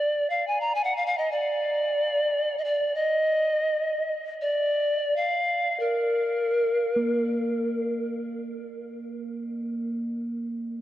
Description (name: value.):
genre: world meditative, free-time meditation music.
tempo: free time.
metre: none.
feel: none.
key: Bb major.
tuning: A4 = 440 Hz.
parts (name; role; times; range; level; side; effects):
bright polished pan flute; melody; 0.0-8.0 s; Bb4 to Bb5; -24 LUFS; equal; tape echo.
bronze singing bowl; texture; 7.0-10.8 s; Bb3; -30 LUFS; right 1 dB; none.
room: wet huge ambient reverb, RT60 5.0 s.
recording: worn, warbling old tape, cassette tape, warbly pitch drift.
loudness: -24 LUFS.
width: side -13 dB against mid.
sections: 0.0-10.8 A section.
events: none.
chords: none.